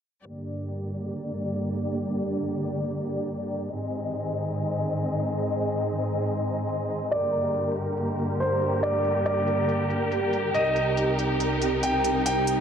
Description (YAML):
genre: heavy wobble dubstep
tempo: 140 BPM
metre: 4/4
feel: half-time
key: G phrygian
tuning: A4 = 440 Hz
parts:
  - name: dark symphonic string section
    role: sustained chords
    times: 0.3-12.6 s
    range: C2 to Eb5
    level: -26 LUFS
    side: equal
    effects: none
  - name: electronic hi-hat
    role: drums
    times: 0.3-12.6 s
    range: none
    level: -36 LUFS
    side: right 2 dB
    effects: low-pass filter on hats, small room ambience
  - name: ethereal airy pad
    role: texture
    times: 1.4-12.6 s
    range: C4 to C6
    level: -33 LUFS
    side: right 3 dB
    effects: ensemble chorus, built-in reverb
  - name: clear concert grand piano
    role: melody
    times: 7.1-12.6 s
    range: C5 to G5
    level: -26 LUFS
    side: equal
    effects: digital delay
room: moderate lush hall reverb, RT60 1.6 s, small room ambience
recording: low-pass filter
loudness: -24 LUFS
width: side -8 dB against mid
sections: 0.3-12.6 A section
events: fade-in on ambient pad 0.3-12.6; filter sweep on drum 0.3-12.6; filter sweep 0.3-12.6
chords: 0.3 Gm; 3.7 Ab; 7.1 Gm; 10.5 Cm